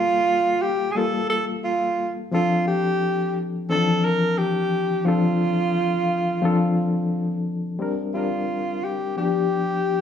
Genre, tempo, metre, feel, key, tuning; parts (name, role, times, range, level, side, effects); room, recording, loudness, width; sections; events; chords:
soul; 88 BPM; 4/4; straight; A4 = 439 Hz
breathy tenor saxophone; melody; 0.0-10.0 s; F4 to Bb4; -23 LUFS; right 1 dB
barky reed electric piano; accompaniment; 0.0-10.0 s; E3 to A5; -23 LUFS; left 3 dB; overdrive, fast tremolo
moderate large studio reverb, RT60 1.1 s; band playing live in one room; -20 LUFS; side -8 dB against mid
0.0-7.8 A section; 7.8-10.0 B section
0.0 Gm9; 2.3 Dm7; 7.8 Bb69; 9.2 G7